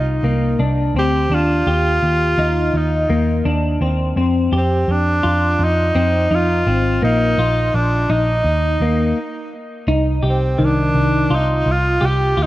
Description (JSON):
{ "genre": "dream pop", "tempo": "84 BPM", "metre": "4/4", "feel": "straight", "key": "Eb major", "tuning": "A4 = 441 Hz", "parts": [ { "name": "clear tenor saxophone", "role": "melody", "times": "0.0-12.5 s", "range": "C4 to G4", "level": "-19 LUFS", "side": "equal", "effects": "tape echo" }, { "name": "semi-hollow electric guitar", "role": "arpeggios", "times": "0.0-12.5 s", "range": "Eb3 to G4", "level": "-21 LUFS", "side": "left 2 dB", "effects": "analog chorus, tape echo" }, { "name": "vintage muted picked electric bass", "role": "bass", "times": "0.0-12.5 s", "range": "Ab1 to F2", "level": "-18 LUFS", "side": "equal", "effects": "none" } ], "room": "light reverb, studio reverb", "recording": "worn, warbling old tape, cassette tape, warbly pitch drift", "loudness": "-15 LUFS", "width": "side -16 dB against mid", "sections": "0.0-9.9 A section; 9.9-12.5 A section", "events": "stop 9.2-9.9", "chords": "0.0 Cm9; 1.3 Ebmaj9; 4.2 F7(no3); 7.0 Bbsus4; 8.4 Eb5; 9.9 Cmadd9", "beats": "0.59 | 1.31 2.02 2.74 3.45 | 4.16 4.88 5.59 6.31 | 7.02 7.74 8.45 9.16 | 9.88 10.59 11.31 12.02" }